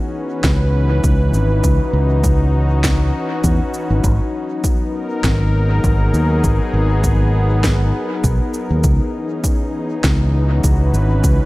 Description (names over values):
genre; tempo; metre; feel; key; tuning
ambient dub; 100 BPM; 4/4; swing 56% on 16ths; unclear; A4 = 440 Hz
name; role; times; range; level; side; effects
warm analog pad; sustained chords; 0.0-11.5 s; E3 to B4; -21 LUFS; left 2 dB; chorus
fingered electric bass; bass; 0.4-11.4 s; G#1 to E2; -15 LUFS; equal; tube saturation
electronic kick drum; drums; 0.4-11.4 s; none; -18 LUFS; equal; none
electronic snare drum and shaker; drums; 0.4-11.4 s; none; -25 LUFS; equal; dub echo
room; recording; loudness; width
light reverb, digital ambience; none; -14 LUFS; side -19 dB against mid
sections
0.0-11.5 A section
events
none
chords
0.0 C#m11; 4.0 G#m9; 8.8 C#m11